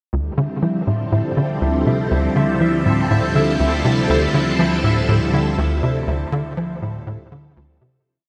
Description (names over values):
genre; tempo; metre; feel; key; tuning
ambient, sequencer-driven space music; 121 BPM; 4/4; straight; D minor; A4 = 440 Hz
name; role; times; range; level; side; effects
phased string machine; sustained chords; 0.1-8.1 s; D3 to A4; -23 LUFS; equal; ensemble chorus, phaser
tight sequencer bass; riff; 0.1-8.0 s; D2 to F3; -22 LUFS; equal; ensemble chorus, tape echo
fat analog bass; bass; 0.1-8.0 s; D2; -32 LUFS; equal; none
pulsing gated texture; texture; 0.4-8.1 s; E4 to E5; -28 LUFS; equal; chorus, built-in reverb
room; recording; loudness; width
moderate plate reverb, RT60 3.9 s; none; -19 LUFS; mono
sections
0.1-8.1 A section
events
fade-in on analog synth bass 0.1-8.1; fade-out 5.4-8.1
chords
0.1 Dmadd9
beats
| 0.13 0.62 1.12 1.62 | 2.11 2.61 3.10 3.60 | 4.09 4.59 5.09 5.58 | 6.08 6.57 7.07 7.57